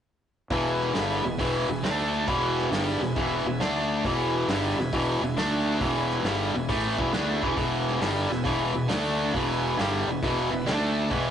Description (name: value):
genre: blues rock power trio and southern rock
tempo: 136 BPM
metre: 4/4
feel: swing 67% on 8ths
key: E mixolydian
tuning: A4 = 441 Hz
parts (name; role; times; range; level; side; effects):
- bright tonewheel organ; sustained chords; 0.5-11.3 s; A3 to B4; -34 LUFS; right 2 dB; overdrive, slow rotary speaker
- overdriven electric guitar; riff; 0.5-11.3 s; E2 to D4; -25 LUFS; equal; none
- fuzz fingered electric bass; bass; 0.5-11.3 s; E1 to D2; -32 LUFS; equal; overdrive
- vintage drum kit; drums; 0.5-11.2 s; hi-hat, kick drum, snare drum; -34 LUFS; equal; none
room: wet small room reverb, RT60 0.6 s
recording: rough rehearsal-room recording, tube saturation, nothing above 10.8 kHz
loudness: -23 LUFS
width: side -9 dB against mid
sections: 0.5-11.3 A section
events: none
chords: 0.5 E; 1.8 D5; 2.3 E; 3.6 D5; 4.0 E; 5.4 D5; 5.8 E; 8.9 D5; 9.3 E; 10.7 D5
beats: | 0.50 0.95 1.39 1.83 | 2.27 2.72 3.16 3.60 | 4.04 4.49 4.93 5.37 | 5.81 6.25 6.69 7.14 | 7.58 8.02 8.46 8.90 | 9.34 9.79 10.23 10.67 | 11.11